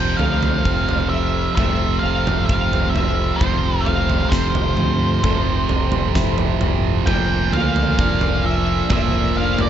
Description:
post-rock; 65 BPM; 4/4; straight; F major; A4 = 440 Hz
octave-fuzz lead guitar; melody; 0.0-9.7 s; C5 to G5; -23 LUFS; equal; distortion, digital delay
glassy FM pad; sustained chords; 0.0-9.7 s; Bb3 to D5; -31 LUFS; left 3 dB; ensemble chorus, built-in reverb
clean electric guitar; arpeggios; 0.0-9.7 s; F3 to E4; -26 LUFS; left 4 dB; wide subtle chorus, digital delay
tight distorted guitar; riff; 0.0-9.7 s; F2 to Bb3; -23 LUFS; right 12 dB; distortion
modern bright fingered electric bass; bass; 0.0-9.7 s; F1 to D2; -23 LUFS; equal
huge arena drum kit; drums; 0.2-9.7 s; kick drum, snare drum, toms; -21 LUFS; equal
studio reverb; dark, warm production, nothing above 7.8 kHz; -16 LUFS; side -10 dB against mid
0.0-9.7 A section
0.0 Fmaj7; 7.1 Bbmaj7/F
0.66 1.57 2.49 | 3.41 4.33 5.24 6.16 | 7.08 8.00 8.91

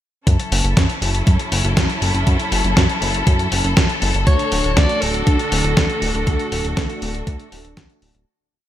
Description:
italo disco; 120 BPM; 4/4; straight; F# minor; A4 = 440 Hz
rich studio string section; sustained chords; 0.3-8.2 s; D3 to A4; -23 LUFS; left 1 dB; vintage 12-bit sampler grit
chorused synth bass; bass; 0.3-8.3 s; D1 to F#2; -20 LUFS; equal
dusty soul sampler-style drum kit; drums; 0.3-8.2 s; hi-hat, snare drum; -22 LUFS; equal; small room ambience
electronic kick drum; drums; 0.3-7.9 s; -18 LUFS; equal; overdrive, small room ambience
bright alto saxophone; melody; 4.3-7.8 s; A4 to D5; -24 LUFS; equal; digital delay
mellow synth brass; stabs; 4.3-8.2 s; A3 to A4; -28 LUFS; right 1 dB; chorus
light reverb; bright 1980s-style digital production; -15 LUFS; side -12 dB against mid
0.3-8.3 verse
fade-out 5.6-8.3
0.3 F#m7; 4.3 D
| 0.27 0.77 1.27 1.77 | 2.27 2.77 3.27 3.77 | 4.27 4.77 5.27 5.77 | 6.27 6.77 7.27 7.77

